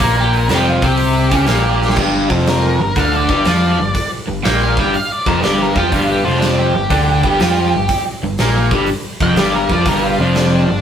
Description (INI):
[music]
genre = blues rock power trio and southern rock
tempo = 122 BPM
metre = 4/4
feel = swing 67% on 8ths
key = unclear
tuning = A4 = 440 Hz
[part]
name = octave-fuzz lead guitar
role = melody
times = 0.0-10.8 s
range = D4 to G5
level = -19 LUFS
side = right 1 dB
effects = distortion
[part]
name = crunchy overdriven guitar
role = riff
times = 0.0-10.8 s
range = F2 to F4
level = -16 LUFS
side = equal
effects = none
[part]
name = overdriven picked electric bass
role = bass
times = 0.0-10.8 s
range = F1 to F2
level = -19 LUFS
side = left 1 dB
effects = none
[part]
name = big rock drum kit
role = drums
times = 0.0-10.5 s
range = crash cymbal, hi-hat, kick drum, snare drum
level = -20 LUFS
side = equal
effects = none
[sound]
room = wet studio reverb, RT60 0.6 s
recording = rough rehearsal-room recording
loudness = -12 LUFS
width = side -8 dB against mid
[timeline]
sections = 0.0-2.0 A section; 2.0-10.8 B section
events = drum fill 1.7; lead electric guitar solo 2.0-10.8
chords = 0.0 G5